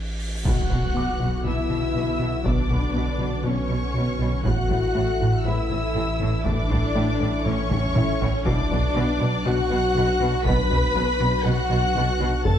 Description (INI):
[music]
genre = cinematic, hybrid orchestral and electronic film score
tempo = 120 BPM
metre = 4/4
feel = straight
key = B minor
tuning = A4 = 441 Hz
[part]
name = saturated sub bass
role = bass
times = 0.0-12.6 s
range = F#1 to B1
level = -29 LUFS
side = equal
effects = none
[part]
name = cymbal swell and impact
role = sound effects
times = 0.0-2.5 s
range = none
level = -29 LUFS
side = equal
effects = none
[part]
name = felt-muted upright piano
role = texture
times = 0.0-12.6 s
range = E4 to D6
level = -36 LUFS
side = left 3 dB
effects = tape echo
[part]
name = warm symphonic violin section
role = second line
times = 0.4-12.6 s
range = C#5 to B5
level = -30 LUFS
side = left 4 dB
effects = none
[part]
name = mellow French horn section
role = sustained chords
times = 0.4-12.6 s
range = C#4 to B4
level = -30 LUFS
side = left 4 dB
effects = none
[part]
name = rich symphonic double bass section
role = bass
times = 0.4-12.5 s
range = F#1 to B1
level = -30 LUFS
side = right 3 dB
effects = none
[part]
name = rich symphonic violin section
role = melody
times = 0.5-12.6 s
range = C#6 to B6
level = -33 LUFS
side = left 1 dB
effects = none
[part]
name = rich symphonic viola section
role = accompaniment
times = 0.5-12.6 s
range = C#4 to B4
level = -30 LUFS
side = equal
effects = none
[part]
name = hollow soft pad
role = sustained chords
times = 0.5-12.6 s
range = D3 to E5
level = -32 LUFS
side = right 1 dB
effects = chorus
[part]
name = rubbery square bass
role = riff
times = 0.5-12.6 s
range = F#2 to B3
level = -28 LUFS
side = left 3 dB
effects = none
[part]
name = warm chamber cello section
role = bass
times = 0.5-12.5 s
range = F#2 to B2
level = -30 LUFS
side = right 2 dB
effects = none
[part]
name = taiko ensemble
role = drums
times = 0.5-12.6 s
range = none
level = -26 LUFS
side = equal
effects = none
[sound]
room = moderate recital hall reverb, RT60 1.4 s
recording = dark, warm production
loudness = -20 LUFS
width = side -9 dB against mid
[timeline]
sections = 0.5-12.6 A section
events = break 0.0-0.5; drum fill 0.0-0.5, 7.7-8.5; cymbal swell 0.0-0.5; impact 0.5-2.5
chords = 0.5 Bmadd9; 4.5 A; 8.5 Bm